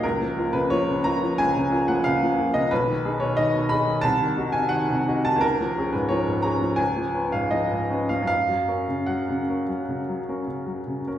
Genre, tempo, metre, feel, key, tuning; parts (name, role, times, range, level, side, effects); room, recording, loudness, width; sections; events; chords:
classical, romantic character piece for solo piano; 71-92 BPM; 4/4; rubato; A4 = 440 Hz
clear upright piano; solo; 0.0-11.2 s; B1 to B5; -21 LUFS; equal
wet recital hall reverb, RT60 1.4 s; heard from further back in the room; -21 LUFS; side -11 dB against mid
0.0-11.2 A section
0.0 A#m/C#; 2.7 G#m/B; 4.0 Cdim; 5.4 C#; 6.8 C#7; 8.3 F#